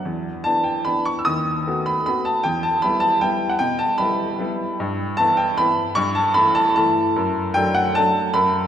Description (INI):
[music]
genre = classical, piano waltz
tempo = 152 BPM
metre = 3/4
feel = uneven beats, rubato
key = D major from 4.8 s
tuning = A4 = 444 Hz
[part]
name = warm upright piano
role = solo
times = 0.0-8.7 s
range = D#2 to E6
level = -18 LUFS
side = equal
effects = none
[sound]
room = wet church reverb, RT60 3.0 s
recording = recorded in a church or concert hall, faint mains hum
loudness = -18 LUFS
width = side -9 dB against mid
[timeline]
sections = 0.0-8.7 A section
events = none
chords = 0.1 E5; 1.3 B7/D#; 2.5 Em; 4.8 Em/G; 6.0 A5/G; 7.2 D/F#